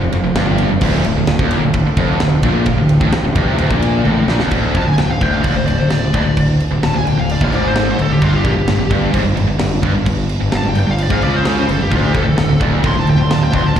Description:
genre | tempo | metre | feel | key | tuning
heavy metal | 130 BPM | 4/4 | straight | D minor | A4 = 442 Hz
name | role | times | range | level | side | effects
sweeping resonant pad | sustained chords | 0.0-4.5, 11.9-13.8 s | C3 to C5 | -26 LUFS | right 1 dB | chorus
distorted electric guitar | riff | 0.0-13.8 s | D2 to Db3 | -22 LUFS | right 1 dB | none
high-gain distorted guitar | riff | 0.0-13.8 s | D2 to Db3 | -21 LUFS | right 8 dB | distortion, slapback echo
tight distorted guitar | riff | 0.0-13.8 s | D2 to Db3 | -20 LUFS | left 7 dB | distortion, slapback echo
fuzz fingered electric bass | bass | 0.0-13.8 s | D1 to Db2 | -17 LUFS | equal | overdrive
tight metal drum kit | drums | 0.1-13.8 s | crash cymbal, kick drum, ride cymbal, snare drum, toms | -20 LUFS | equal | none
high-gain lead guitar | melody | 4.8-13.8 s | F4 to C6 | -22 LUFS | equal | distortion, slapback echo, ping-pong delay
room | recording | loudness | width
studio reverb | live gig heard through the venue's PA, recital hall reverb | -12 LUFS | side -9 dB against mid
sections
0.0-4.5 A section; 4.5-13.8 B section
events
drum fill 4.1-4.5; lead electric guitar solo 4.5-13.8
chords
0.0 F5; 0.8 Dm; 8.2 G(b5, no3); 11.9 Dm

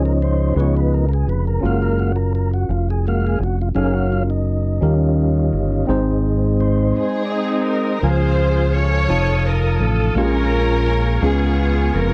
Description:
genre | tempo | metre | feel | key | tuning
slow gospel | 56 BPM (dotted quarters) | 6/8 | straight | Db major | A4 = 438 Hz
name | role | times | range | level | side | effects
mellow tine electric piano | accompaniment | 0.0-12.1 s | Ab2 to A5 | -24 LUFS | equal | overdrive
tonewheel organ | sustained chords | 0.0-12.1 s | F3 to Eb6 | -25 LUFS | equal | fast rotary speaker, overdrive
fingered electric bass | bass | 0.0-12.1 s | F1 to Eb2 | -21 LUFS | equal | none
warm studio string section | melody | 7.0-12.1 s | Cb4 to Db5 | -24 LUFS | equal | tape echo
room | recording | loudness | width
little or no reverb | dry, close 1970s-style studio recording | -18 LUFS | mono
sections
0.0-8.0 A section; 8.0-12.1 B section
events
tonewheel organ solo 0.0-8.0; stop 7.0-8.0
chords
0.0 Dbmaj7; 0.6 Db7; 1.6 Gbmaj7; 3.8 Ebm7/Gb; 4.8 Eb7; 5.9 Ab; 8.0 Dbmaj7; 9.1 F7; 10.2 Bbm7; 11.2 Db7

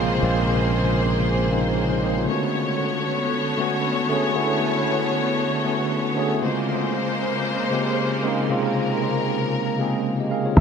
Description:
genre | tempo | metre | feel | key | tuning
amapiano | 116 BPM | 4/4 | swing 55% on 16ths | unclear | A4 = 439 Hz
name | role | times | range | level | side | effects
tine electric piano | accompaniment | 0.0-10.6 s | B#2 to E#5 | -22 LUFS | equal | medium stereo tremolo, analog delay
warm symphonic string section | sustained chords | 0.0-10.5 s | C#3 to C#5 | -24 LUFS | left 2 dB | none
sustaining fretless electric bass | bass | 0.0-2.3 s | A#1 | -23 LUFS | equal | none
deep log drum bass | bass | 10.6 s | B1 | -10 LUFS | equal | none
room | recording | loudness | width
moderate echo chamber reverb, RT60 1.9 s | echo-heavy mix | -20 LUFS | side -6 dB against mid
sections
0.0-10.6 A section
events
none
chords
0.0 A#m9; 2.3 Bm9; 6.4 A#m9

